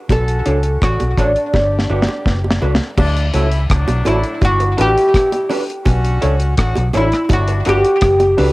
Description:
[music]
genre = lovers rock reggae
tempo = 83 BPM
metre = 4/4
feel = straight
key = unclear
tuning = A4 = 437 Hz
[part]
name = oud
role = melody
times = 0.1-8.4 s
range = D4 to A4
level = -16 LUFS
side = equal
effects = cassette tape, tape echo
[part]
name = warm horn section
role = second line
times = 0.1-7.9 s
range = A2 to G4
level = -26 LUFS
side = left 2 dB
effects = cassette tape
[part]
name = vintage muted fingered electric bass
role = bass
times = 0.1-8.5 s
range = F#1 to D2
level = -17 LUFS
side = equal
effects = none
[part]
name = deep reggae drum kit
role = drums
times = 0.1-8.5 s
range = crash cymbal, hi-hat, kick drum, rim click, snare drum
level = -18 LUFS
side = equal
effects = cassette tape
[part]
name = bongos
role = percussion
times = 0.1-8.5 s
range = none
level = -24 LUFS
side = right 3 dB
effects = none
[part]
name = tine electric piano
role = accompaniment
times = 0.5-8.5 s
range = D4 to C#5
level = -24 LUFS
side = left 2 dB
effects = medium tremolo, cassette tape
[part]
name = electric guitar through a small old amp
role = stabs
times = 0.5-8.5 s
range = A3 to C#5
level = -25 LUFS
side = right 2 dB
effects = analog chorus, cassette tape, analog delay
[sound]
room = light reverb, studio reverb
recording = home recording on cassette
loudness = -13 LUFS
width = side -20 dB against mid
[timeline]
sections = 0.0-3.0 A section; 3.0-8.5 B section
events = drum fill 1.5-3.0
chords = 0.1 Bm9; 1.5 Gmaj7; 3.0 Dmaj7; 4.4 Gmaj7; 5.9 Bm9; 7.3 Gmaj7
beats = | 0.09 0.81 1.53 2.26 | 2.98 3.70 4.42 5.14 | 5.86 6.58 7.30 8.02

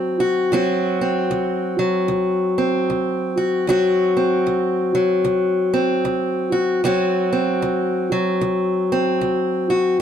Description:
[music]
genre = blues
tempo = 76 BPM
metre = 4/4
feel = swing 61% on 8ths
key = D mixolydian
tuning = A4 = 439 Hz
[part]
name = fingerpicked steel-string acoustic guitar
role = solo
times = 0.0-10.0 s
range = D2 to F#4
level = -17 LUFS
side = equal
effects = none
[sound]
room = light reverb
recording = dark, warm production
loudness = -17 LUFS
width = side -9 dB against mid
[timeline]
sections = 0.0-10.0 A section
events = none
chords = 0.0 D7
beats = | 0.52 1.31 2.10 2.90 | 3.69 4.48 5.27 6.06 | 6.85 7.64 8.43 9.22 | 10.01

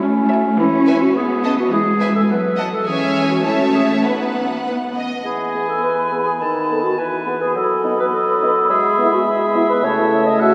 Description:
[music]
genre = quick classical-period movement for symphony orchestra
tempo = 105 BPM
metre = 2/4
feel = straight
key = E major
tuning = A4 = 440 Hz
[part]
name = dark clarinet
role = second line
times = 0.0-10.5 s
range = C#4 to E5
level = -22 LUFS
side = equal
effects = none
[part]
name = warm studio viola section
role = accompaniment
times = 0.0-5.0 s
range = E3 to C#4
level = -26 LUFS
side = equal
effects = none
[part]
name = rich symphonic cello section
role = bass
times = 0.0-5.0 s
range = E3 to C#4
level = -22 LUFS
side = equal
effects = none
[part]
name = dark studio violin section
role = melody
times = 0.3-5.0 s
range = F#5 to A5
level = -31 LUFS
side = equal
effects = none
[part]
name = rich studio violin section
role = second line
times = 0.3-5.2 s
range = B4 to F#5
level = -28 LUFS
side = equal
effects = none
[part]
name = mellow hollow silver concert flute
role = second line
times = 5.3-10.5 s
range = A5 to B5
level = -26 LUFS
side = equal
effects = none
[part]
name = warm cor anglais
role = second line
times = 5.3-10.5 s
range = D#5 to A5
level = -26 LUFS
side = equal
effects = none
[part]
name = mellow bassoon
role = accompaniment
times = 5.3-10.5 s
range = C#3 to G#3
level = -26 LUFS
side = equal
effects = none
[part]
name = mellow French horn section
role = sustained chords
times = 5.5-10.5 s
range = A3 to A4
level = -24 LUFS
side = equal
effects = none
[sound]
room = wet church reverb, RT60 4.0 s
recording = studio reverb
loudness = -17 LUFS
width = mono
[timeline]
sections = 0.0-5.3 A section; 5.3-10.5 B section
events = none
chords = 0.0 A; 0.6 N.C.; 1.2 B5; 1.7 E; 2.3 B7(no3)/F#; 2.9 C#m/E; 3.4 Amaj7; 4.0 B; 5.3 E; 6.4 B7/D#; 7.0 E; 7.6 B7/F#; 8.7 E/G#; 9.8 A/C#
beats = 0.03 | 0.60 1.16 | 1.73 2.30 | 2.87 3.45 | 4.04 4.65 | 5.25 5.83 | 6.41 6.98 | 7.56 8.13 | 8.70 9.27 | 9.84 10.40

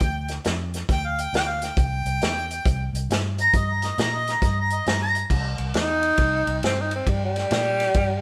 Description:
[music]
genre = electric blues shuffle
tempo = 136 BPM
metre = 4/4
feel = swing 64% on 8ths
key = unclear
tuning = A4 = 441 Hz
[part]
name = warm harmonica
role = second line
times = 0.0-5.2 s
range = Eb5 to Bb5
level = -27 LUFS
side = equal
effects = none
[part]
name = vintage muted fingered electric bass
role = bass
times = 0.0-8.2 s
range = C2 to Bb2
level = -30 LUFS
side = equal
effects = none
[part]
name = warm soul drum kit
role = drums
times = 0.0-8.1 s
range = crash cymbal, hi-hat, kick drum, ride cymbal, snare drum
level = -28 LUFS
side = equal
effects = none
[part]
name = breathy tenor saxophone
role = melody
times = 5.7-8.2 s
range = G3 to Eb4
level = -25 LUFS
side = equal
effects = none
[sound]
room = moderate stone room reverb, RT60 1.1 s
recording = band playing live in one room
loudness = -23 LUFS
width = mono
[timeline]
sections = 0.0-5.3 A section; 5.3-8.2 A section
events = harmonica solo 0.0-5.3; tenor saxophone solo 5.3-8.2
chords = 0.0 G7(no3); 1.8 C7(no3); 5.3 C7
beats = | 0.01 0.46 0.90 1.34 | 1.78 2.22 2.66 3.10 | 3.54 3.98 4.42 4.86 | 5.30 5.75 6.18 6.63 | 7.07 7.51 7.95

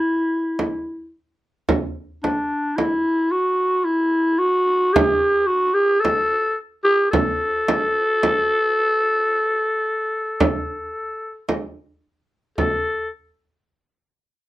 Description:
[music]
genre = Arabic maqam ensemble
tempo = 110 BPM (eighths)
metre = 10/8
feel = straight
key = A maqam rast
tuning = A4 = 437 Hz
[part]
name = growling clarinet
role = melody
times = 0.0-13.1 s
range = D4 to A4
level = -18 LUFS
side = equal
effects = none
[part]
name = frame drum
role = percussion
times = 0.6-13.1 s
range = none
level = -21 LUFS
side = right 2 dB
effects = none
[sound]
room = light reverb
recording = none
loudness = -18 LUFS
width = side -15 dB against mid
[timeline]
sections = 0.0-12.6 A section; 12.6-14.5 B section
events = none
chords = none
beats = 0.04 0.58 1.13 | 1.68 2.22 2.77 3.31 3.86 4.41 4.95 5.50 6.04 6.59 | 7.13 7.68 8.22 8.77 9.31 9.86 10.40 10.95 11.49 12.04 | 12.58

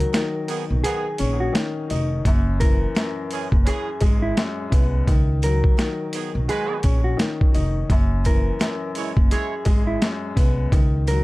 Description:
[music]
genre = hip hop, boom-bap hip-hop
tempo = 85 BPM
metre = 4/4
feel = swing 59% on 16ths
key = F# mixolydian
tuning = A4 = 440 Hz
[part]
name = mellow electric guitar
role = melody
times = 0.0-11.2 s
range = E4 to A#4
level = -28 LUFS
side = left 1 dB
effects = high-pass filter, low-pass filter, analog delay
[part]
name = warm upright piano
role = accompaniment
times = 0.0-11.2 s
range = F#2 to D#4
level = -27 LUFS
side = left 3 dB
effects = cassette tape, high-pass filter, low-pass filter
[part]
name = boom bap sampler-style drum kit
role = drums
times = 0.0-11.2 s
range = hi-hat, kick drum, snare drum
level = -19 LUFS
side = equal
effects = none
[part]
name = sleigh bells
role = percussion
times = 0.1-11.2 s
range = none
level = -42 LUFS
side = right 12 dB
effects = none
[part]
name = warm horn section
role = stabs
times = 0.5-9.5 s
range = D#3 to C#5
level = -31 LUFS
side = right 6 dB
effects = high-pass filter, low-pass filter, analog delay
[part]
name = upright bass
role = bass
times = 0.7-11.2 s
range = E#1 to C#2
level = -22 LUFS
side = equal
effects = none
[sound]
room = little or no reverb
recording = dark, warm production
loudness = -18 LUFS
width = side -20 dB against mid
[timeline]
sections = 0.0-11.2 A section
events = break 0.0-2.3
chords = 0.0 C#9sus4; 2.3 F#9sus4; 5.1 C#9sus4; 7.9 F#9sus4; 10.7 C#sus4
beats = 0.14 0.84 1.55 | 2.25 2.96 3.66 4.37 | 5.08 5.78 6.49 7.19 | 7.90 8.61 9.31 10.02 | 10.72

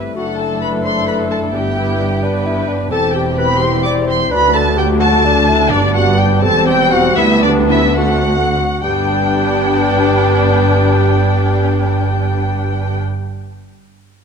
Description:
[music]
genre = quick classical-period movement for symphony orchestra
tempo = 68-88 BPM (dotted quarters)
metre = 6/8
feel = rubato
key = G major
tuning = A4 = 436 Hz
[part]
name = muted chamber violin section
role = melody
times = 0.0-13.0 s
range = C4 to B4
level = -22 LUFS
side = left 5 dB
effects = none
[part]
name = mellow bassoon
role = accompaniment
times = 0.0-13.0 s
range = G3 to F#4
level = -22 LUFS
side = right 2 dB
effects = none
[part]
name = muted chamber viola section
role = accompaniment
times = 0.0-13.0 s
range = F#3 to E4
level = -24 LUFS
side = right 2 dB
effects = none
[part]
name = mellow French horn section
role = sustained chords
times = 0.0-13.0 s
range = A3 to B4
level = -22 LUFS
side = left 7 dB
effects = none
[part]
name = muted chamber double bass section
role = bass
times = 0.0-13.0 s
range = E1 to D2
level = -20 LUFS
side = right 4 dB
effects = none
[part]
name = muted studio cello section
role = bass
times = 0.0-13.0 s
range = D2 to G2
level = -20 LUFS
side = right 3 dB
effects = none
[part]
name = dark clarinet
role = second line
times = 0.2-13.0 s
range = D4 to D5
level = -22 LUFS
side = left 2 dB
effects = none
[part]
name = muted chamber violin section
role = second line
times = 0.2-13.0 s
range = D5 to D6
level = -18 LUFS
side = left 1 dB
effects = none
[sound]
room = moderate concert hall reverb, RT60 1.9 s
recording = none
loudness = -12 LUFS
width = side -6 dB against mid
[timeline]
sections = 0.0-8.8 A section; 8.8-12.2 B section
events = slowing down 5.0-8.8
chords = 0.2 D/F#; 1.5 G; 2.9 C/E; 4.3 D; 5.7 G; 6.4 C/E; 7.2 G/D; 8.0 D7; 8.8 G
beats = | 0.16 0.85 | 1.54 2.23 | 2.92 3.62 | 4.32 5.01 | 5.72 6.43 | 7.18 7.98 | 8.84 9.68 | 10.53 11.37

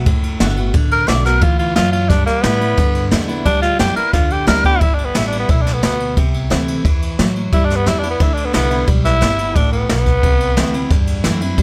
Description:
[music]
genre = rockabilly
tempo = 177 BPM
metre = 4/4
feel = straight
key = G major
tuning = A4 = 440 Hz
[part]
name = picked steel-string acoustic guitar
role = accompaniment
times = 0.0-11.6 s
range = G2 to F#4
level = -24 LUFS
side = equal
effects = none
[part]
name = upright bass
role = bass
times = 0.0-11.6 s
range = F#1 to A2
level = -22 LUFS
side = equal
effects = none
[part]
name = jazz brush drum kit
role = drums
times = 0.1-11.6 s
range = kick drum, ride cymbal, snare drum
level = -19 LUFS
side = equal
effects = none
[part]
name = growling tenor saxophone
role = melody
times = 0.9-10.9 s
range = Bb3 to D5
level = -20 LUFS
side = equal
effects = none
[sound]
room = light reverb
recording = none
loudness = -16 LUFS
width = mono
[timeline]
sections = 0.0-4.8 A section; 4.8-11.6 B section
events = tenor saxophone solo 0.0-4.8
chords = 0.0 D6; 2.1 G6; 6.2 C6; 7.5 G6; 10.2 C6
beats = 0.07 0.41 | 0.74 1.08 1.42 1.76 | 2.10 2.44 2.78 3.12 | 3.46 3.80 4.14 4.48 | 4.82 5.15 5.49 5.83 | 6.17 6.51 6.85 7.19 | 7.53 7.87 8.21 8.54 | 8.88 9.22 9.56 9.90 | 10.23 10.57 10.91 11.25 | 11.59

